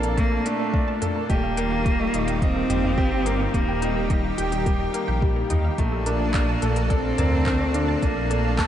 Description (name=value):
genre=piano and strings electronica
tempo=107 BPM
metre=4/4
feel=straight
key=Bb major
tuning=A4 = 440 Hz
part: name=lush unison pad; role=sustained chords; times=0.0-8.7 s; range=Bb2 to A4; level=-31 LUFS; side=equal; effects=chorus, sidechain pumping
part: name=wide unison pluck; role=arpeggios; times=0.0-8.6 s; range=G4 to A5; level=-35 LUFS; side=right 3 dB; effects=none
part: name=bright upright piano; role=riff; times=0.0-8.7 s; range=G3 to Eb5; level=-28 LUFS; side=left 1 dB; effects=diffuse ambient delay
part: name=dark detuned saw bass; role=bass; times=0.0-8.7 s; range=Eb1 to Eb2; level=-26 LUFS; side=equal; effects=tube saturation, sidechain pumping
part: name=organic electronic drum kit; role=drums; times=0.0-8.7 s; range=handclaps, hi-hat, toms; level=-32 LUFS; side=left 1 dB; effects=none
part: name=rich cello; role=melody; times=0.2-8.7 s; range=G3 to C4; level=-27 LUFS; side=right 1 dB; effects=diffuse ambient delay
part: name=electronic kick drum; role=drums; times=0.2-8.7 s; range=none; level=-24 LUFS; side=equal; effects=none
room=moderate cathedral reverb, RT60 5.8 s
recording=dreamy mix soaked in reverb, nothing above 10.5 kHz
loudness=-20 LUFS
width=side -10 dB against mid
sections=0.0-8.7 A section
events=none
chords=0.0 Bbmaj7; 1.3 Ebadd9; 5.8 Bbmaj7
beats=0.18 0.74 | 1.30 1.86 2.42 2.98 | 3.54 4.10 4.66 5.22 | 5.78 6.34 6.91 7.47 | 8.03 8.59